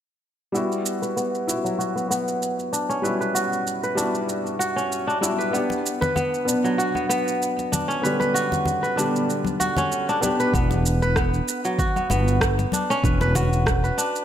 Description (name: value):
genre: organic downtempo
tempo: 96 BPM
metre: 4/4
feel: swing 54% on 16ths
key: unclear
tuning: A4 = 442 Hz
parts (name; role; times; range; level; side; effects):
- felt-muted upright piano; accompaniment; 0.5-10.6 s; D3 to G4; -26 LUFS; left 1 dB; vintage 12-bit sampler grit, sidechain pumping, low-pass filter, digital delay
- kora; arpeggios; 0.5-14.2 s; F#3 to B4; -24 LUFS; equal; vintage 12-bit sampler grit, low-pass filter, digital delay
- electronic shaker and rim click; drums; 0.6-14.2 s; none; -28 LUFS; right 3 dB; overdrive
- congas; percussion; 5.7-13.5 s; none; -30 LUFS; left 3 dB; none
- fretless electric bass; bass; 10.5-13.9 s; E1 to G1; -21 LUFS; equal; tube saturation, ensemble chorus, sidechain pumping
- electronic kick drum; drums; 10.5-13.8 s; none; -24 LUFS; equal; overdrive
room: moderate lush hall reverb, RT60 1.6 s, studio reverb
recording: none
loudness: -20 LUFS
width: side -10 dB against mid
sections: 0.5-10.5 A section; 10.5-14.2 B section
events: filter sweep on kora 0.5-10.5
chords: 0.5 Emadd9; 5.5 Gmaj7#11; 10.5 Emadd9